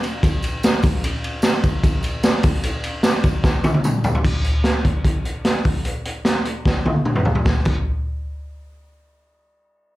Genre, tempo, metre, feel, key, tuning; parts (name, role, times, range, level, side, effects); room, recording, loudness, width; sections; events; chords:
indie pop; 149 BPM; 4/4; straight
raw garage drum kit; drums; 0.0-7.8 s; crash cymbal, hi-hat, kick drum, ride cymbal, snare drum, toms; -17 LUFS; equal
tambourine; percussion; 0.0-4.1 s; -39 LUFS; right 2 dB
little or no reverb; live gig heard through the venue's PA, club reverb; -17 LUFS; side -17 dB against mid
0.0-4.2 A section; 4.2-7.5 B section; 7.5-9.1 C section
drum fill 3.4-4.2, 6.7-7.5